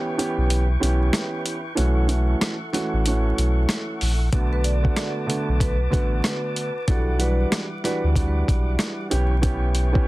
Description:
hip hop, boom-bap hip-hop; 94 BPM; 4/4; swing 60% on 16ths; B minor; A4 = 440 Hz
dark upright piano; accompaniment; 0.0-10.1 s; D3 to G4; -26 LUFS; right 2 dB; cassette tape
tonewheel organ; sustained chords; 0.0-10.1 s; G3 to D6; -34 LUFS; left 1 dB; fast rotary speaker
dusty soul sampler-style drum kit; drums; 0.2-10.1 s; hi-hat, kick drum, rim click, snare drum; -24 LUFS; equal
sub bass with octave; bass; 0.4-10.0 s; A1 to D2; -21 LUFS; equal
vibraphone with medium mallets; melody; 4.5-8.0 s; A4 to D5; -31 LUFS; left 1 dB; digital delay
little or no reverb; dense, heavily limited modern master, vinyl crackle; -20 LUFS; side -19 dB against mid
0.0-10.1 A section
break 0.0-4.3
0.0 C#m7b5/B; 1.8 F#m7; 4.3 Bm7; 6.9 Em9/B; 9.1 C#m7b5/B

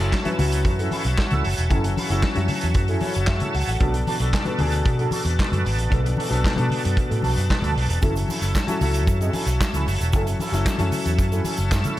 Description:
disco; 114 BPM; 4/4; straight; F# minor; A4 = 443 Hz
mellow electric guitar; accompaniment; 0.0-12.0 s; C#4 to A4; -32 LUFS; right 3 dB; wah
warm grand piano; accompaniment; 0.0-12.0 s; B2 to A5; -28 LUFS; left 4 dB
overdriven tonewheel organ; sustained chords; 0.0-12.0 s; F#4 to A5; -30 LUFS; equal; chorus vibrato, slow rotary speaker
fingered electric bass with an envelope filter; bass; 0.0-11.8 s; E1 to B2; -22 LUFS; equal
vintage drum kit; drums; 0.0-12.0 s; handclaps, hi-hat, kick drum, snare drum; -24 LUFS; equal
congas; percussion; 0.3-12.0 s; -31 LUFS; left 2 dB
egg shaker; percussion; 8.0-12.0 s; -40 LUFS; right 13 dB
light reverb, small room ambience; -19 LUFS; side -14 dB against mid
0.0-12.0 A section
grand piano fill 2.8-3.8
0.0 F#m7; 3.8 Bm7; 8.0 F#m7

